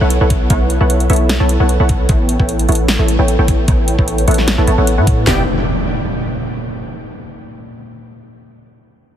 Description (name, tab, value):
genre	future bass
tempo	151 BPM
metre	4/4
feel	swing 53% on 16ths, half-time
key	E dorian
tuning	A4 = 440 Hz
part	supersaw stab	riff	0.0-5.4 s	B3 to A5	-18 LUFS	equal	sidechain pumping, low-pass filter, tape echo
part	warm 808-style bass	bass	0.0-5.5 s	E1 to A2	-14 LUFS	equal	sidechain pumping
part	big-room dance drum kit	drums	0.1-5.2 s	hi-hat, snare drum	-22 LUFS	equal	none
part	trap drum kit	drums	0.3-5.4 s	handclaps, kick drum, snare drum	-15 LUFS	equal	none
part	impact	sound effects	5.3-6.9 s	none	-20 LUFS	equal	none
room	light reverb, digital ambience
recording	heavily compressed radio sound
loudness	-12 LUFS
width	side -10 dB against mid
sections	0.0-5.3 A section; 5.3-6.9 B section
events	none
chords	0.0 B9sus4; 2.1 A9; 5.3 Em7